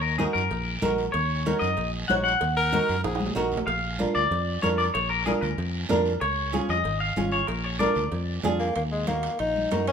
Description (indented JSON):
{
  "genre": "latin, cumbia",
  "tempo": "189 BPM",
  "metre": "4/4",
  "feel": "straight",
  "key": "Eb minor",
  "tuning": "A4 = 441 Hz",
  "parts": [
    { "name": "clean electric guitar", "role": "melody", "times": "0.0-8.4 s", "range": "Ab4 to Gb5", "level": "-27 LUFS", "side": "left 3 dB", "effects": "spring reverb" },
    { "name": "fingered electric bass", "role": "bass", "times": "0.0-9.9 s", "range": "Ab1 to Gb2", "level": "-30 LUFS", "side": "equal", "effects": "none" },
    { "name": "flamenco guitar", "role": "accompaniment", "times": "0.2-9.9 s", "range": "Db4 to Db5", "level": "-28 LUFS", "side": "right 3 dB", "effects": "none" },
    { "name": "congas", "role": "percussion", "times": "0.2-9.9 s", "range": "none", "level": "-33 LUFS", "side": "left 3 dB", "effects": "none" },
    { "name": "guiro", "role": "percussion", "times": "0.2-9.9 s", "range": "none", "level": "-40 LUFS", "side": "right 5 dB", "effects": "none" },
    { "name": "cowbell and timbales", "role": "percussion", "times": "0.5-9.9 s", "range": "none", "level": "-36 LUFS", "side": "right 5 dB", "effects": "none" },
    { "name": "raspy tenor saxophone", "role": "second line", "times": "2.6-3.6, 8.6-9.9 s", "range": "Ab3 to Bb4", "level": "-27 LUFS", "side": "left 2 dB", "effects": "none" }
  ],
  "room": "moderate large studio reverb, RT60 1.0 s",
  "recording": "minimal, uncompressed stereo recording",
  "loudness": "-23 LUFS",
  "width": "side -7 dB against mid",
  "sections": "0.0-8.8 A section; 8.8-9.9 B section",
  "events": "drum fill 3.0-3.7; tenor saxophone solo 8.8-9.9",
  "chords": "0.0 Ebm; 3.7 Bb; 6.2 Db; 7.5 Bb7; 8.8 Ebm",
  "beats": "0.19 0.50 0.82 | 1.14 1.46 1.77 2.09 | 2.41 2.73 3.04 3.36 | 3.68 3.99 4.31 4.63 | 4.95 5.26 5.58 5.90 | 6.21 6.53 6.85 7.17 | 7.49 7.80 8.12 8.44 | 8.76 9.08 9.40 9.71"
}